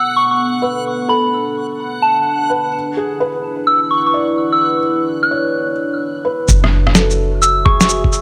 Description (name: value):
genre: future garage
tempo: 128 BPM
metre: 4/4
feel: swing 65% on 16ths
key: F# minor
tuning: A4 = 440 Hz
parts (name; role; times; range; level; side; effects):
- soft synth bell; melody; 0.0-7.9 s; A5 to F#6; -18 LUFS; equal; chorus, phaser, vintage 12-bit sampler grit, delay
- dark analog pad; sustained chords; 0.0-8.2 s; B3 to E5; -24 LUFS; equal; chorus, phaser, sidechain pumping
- backwards swelling texture; texture; 0.0-6.5 s; F#5; -30 LUFS; equal; built-in reverb
- felt-muted upright piano; accompaniment; 0.6-8.2 s; G#4 to D5; -24 LUFS; equal; sidechain pumping, digital delay
- soft 808-style bass; bass; 6.5-8.2 s; F#1; -18 LUFS; equal; sidechain pumping
- electronic kick drum; drums; 6.5-8.1 s; none; -15 LUFS; equal; overdrive
- electronic shaker, rim click and snare drum; drums; 6.5-8.2 s; none; -16 LUFS; equal; overdrive
room: moderate lush hall reverb, RT60 2.1 s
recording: none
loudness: -15 LUFS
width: mono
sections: 0.0-6.5 A section; 6.5-8.2 B section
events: none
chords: 0.0 Bm7; 2.7 E7; 6.5 F#m9